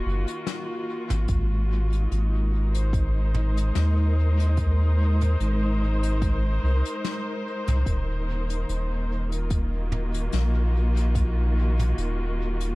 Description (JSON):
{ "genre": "ambient dub", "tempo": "73 BPM", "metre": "4/4", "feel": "swing 55% on 16ths", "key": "Eb dorian", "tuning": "A4 = 444 Hz", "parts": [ { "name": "dark studio string section", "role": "sustained chords", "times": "0.0-12.8 s", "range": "Eb3 to C5", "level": "-30 LUFS", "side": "equal", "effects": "none" }, { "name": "soft dub sub bass", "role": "bass", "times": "0.1-12.8 s", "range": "Eb1 to Eb2", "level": "-22 LUFS", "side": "equal", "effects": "none" }, { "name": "jazz brush drum kit", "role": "drums", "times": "0.3-12.8 s", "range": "hi-hat, snare drum, toms", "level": "-35 LUFS", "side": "left 1 dB", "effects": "dub echo" }, { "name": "electronic kick drum", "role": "drums", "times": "1.3-11.3 s", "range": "none", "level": "-27 LUFS", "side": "equal", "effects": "none" } ], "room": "studio ambience", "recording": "dark, warm production", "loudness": "-22 LUFS", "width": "side -21 dB against mid", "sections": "0.0-12.8 A section", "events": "none", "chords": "0.0 Ebmadd9; 1.3 Ab7; 7.9 Ebmadd9" }